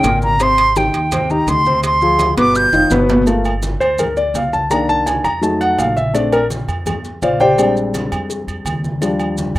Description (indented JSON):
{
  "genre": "Afro-Cuban jazz",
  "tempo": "167 BPM",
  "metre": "4/4",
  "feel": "straight",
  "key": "G minor from 3.3 s",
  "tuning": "A4 = 440 Hz",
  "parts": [
    { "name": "silver concert flute", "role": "melody", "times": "0.0-2.9 s", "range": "G5 to G6", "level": "-14 LUFS", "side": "right 1 dB", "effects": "plate reverb" },
    { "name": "warm concert grand piano", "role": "accompaniment", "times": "0.0-9.5 s", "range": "Bb2 to Bb5", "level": "-16 LUFS", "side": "left 1 dB", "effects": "plate reverb" },
    { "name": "upright bass", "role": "bass", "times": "0.0-9.6 s", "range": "F1 to G2", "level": "-22 LUFS", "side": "equal", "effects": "none" },
    { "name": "bongos and cowbell", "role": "percussion", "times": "0.0-9.6 s", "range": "none", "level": "-30 LUFS", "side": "left 4 dB", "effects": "none" },
    { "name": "congas", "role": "percussion", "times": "0.0-9.6 s", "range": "none", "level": "-27 LUFS", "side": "equal", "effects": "none" },
    { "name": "maracas", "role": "percussion", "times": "0.0-9.6 s", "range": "none", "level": "-32 LUFS", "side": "right 3 dB", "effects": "none" },
    { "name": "timbales and agogo bells", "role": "percussion", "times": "0.0-9.6 s", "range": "none", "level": "-26 LUFS", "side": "right 4 dB", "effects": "none" }
  ],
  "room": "light reverb",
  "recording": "rough home demo mix",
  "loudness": "-13 LUFS",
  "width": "side -16 dB against mid",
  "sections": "0.0-3.3 A section; 3.3-9.6 A section",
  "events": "flute solo 0.0-3.3; drum fill 2.7-3.3; grand piano solo 3.3-9.6",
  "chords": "0.4 Abmaj7; 1.8 Dm7b5; 2.6 Gaug7; 3.3 Gm9; 4.7 Cm9; 5.4 F7b9; 6.1 Bbmaj9; 7.6 Bb13; 9.0 Ebmaj7"
}